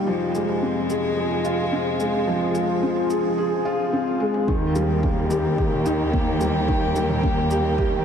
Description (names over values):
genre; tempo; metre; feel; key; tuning
piano and strings electronica; 109 BPM; 4/4; straight; unclear; A4 = 439 Hz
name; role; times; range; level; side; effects
dark string quartet; sustained chords; 0.0-8.0 s; F2 to G4; -28 LUFS; equal; shimmer reverb
felt-muted upright piano; riff; 0.0-8.0 s; Eb3 to Ab4; -22 LUFS; left 1 dB; lush chorus, ping-pong delay, shimmer reverb
electronic toms and shaker; drums; 0.1-7.6 s; none; -40 LUFS; right 2 dB; overdrive, high-pass filter on toms, high-pass filter on perc
warm chamber cello section; bass; 4.5-8.0 s; Eb2; -25 LUFS; equal; tube saturation, sidechain pumping
electronic kick drum; drums; 4.5-7.9 s; none; -24 LUFS; right 1 dB; overdrive
room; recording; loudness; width
wet huge ambient reverb, RT60 8.7 s; dreamy mix soaked in reverb; -20 LUFS; side -7 dB against mid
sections
0.0-4.5 A section; 4.5-8.0 B section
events
build-up 0.0-4.5; drum fill 4.2; drop 4.5-8.0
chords
0.1 Fm; 4.5 Eb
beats
| 0.08 0.63 1.18 1.73 | 2.28 2.83 3.38 3.93 | 4.48 5.03 5.58 6.13 | 6.68 7.23 7.78